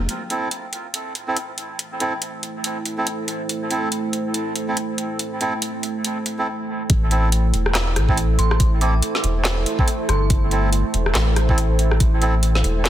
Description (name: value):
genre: deep dubstep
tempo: 141 BPM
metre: 4/4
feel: swing 58% on 16ths, half-time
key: A minor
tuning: A4 = 438 Hz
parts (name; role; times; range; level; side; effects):
- soft dub sub bass; bass; 0.0-0.1, 6.9-12.9 s; E1 to A1; -19 LUFS; equal; none
- deep dark ambient pad; sustained chords; 2.2-12.9 s; A3 to C5; -26 LUFS; right 2 dB; chorus, built-in reverb
- garage drum kit; drums; 0.1-12.9 s; handclaps, hi-hat, rim click, snare drum; -24 LUFS; equal; soft clipping on snare
- melodica; stabs; 0.3-12.3 s; C4 to A4; -26 LUFS; right 2 dB; dub echo
- electronic kick drum; drums; 6.9-12.1 s; none; -18 LUFS; equal; none
- dark detuned synth bell; melody; 8.4-10.7 s; C6 to D6; -32 LUFS; right 3 dB; chorus, phaser, dub echo
room: light reverb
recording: dense, heavily limited modern master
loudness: -18 LUFS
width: side -12 dB against mid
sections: 0.1-6.9 A section; 6.9-12.9 B section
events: filter sweep on ambient pad 0.1-6.9; break 6.5-6.9; drop 6.9-12.9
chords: 0.1 Am